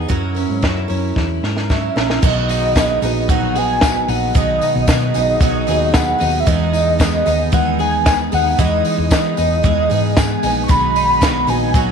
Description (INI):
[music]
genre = jangly indie pop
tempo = 113 BPM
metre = 4/4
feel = straight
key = B major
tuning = A4 = 439 Hz
[part]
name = picked twelve-string acoustic guitar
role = accompaniment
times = 0.0-11.9 s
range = B2 to A#4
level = -21 LUFS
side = right 11 dB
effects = none
[part]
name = twelve-string electric guitar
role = arpeggios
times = 0.0-11.9 s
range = B2 to A#4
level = -23 LUFS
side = left 12 dB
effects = lush chorus, slapback echo
[part]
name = hollow-body short-scale fingered electric bass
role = bass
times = 0.0-11.9 s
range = A#1 to E3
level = -21 LUFS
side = equal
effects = none
[part]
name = compact cocktail drum kit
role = drums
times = 0.1-11.9 s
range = crash cymbal, hi-hat, kick drum, snare drum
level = -19 LUFS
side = equal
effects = none
[part]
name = warm velvety synth lead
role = melody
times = 1.7-11.9 s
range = D#5 to C#6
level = -18 LUFS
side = equal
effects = chorus, slapback echo
[part]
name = tambourine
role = percussion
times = 2.2-11.9 s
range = none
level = -34 LUFS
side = left 16 dB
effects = none
[sound]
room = light reverb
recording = 1960s-style stereo with parts hard left and right, lossy compression artefacts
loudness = -13 LUFS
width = side -6 dB against mid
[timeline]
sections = 0.0-2.2 A section; 2.2-11.9 B section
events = drum fill 1.2-2.2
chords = 0.1 F#7; 2.2 B6; 6.5 Emaj7; 10.7 B6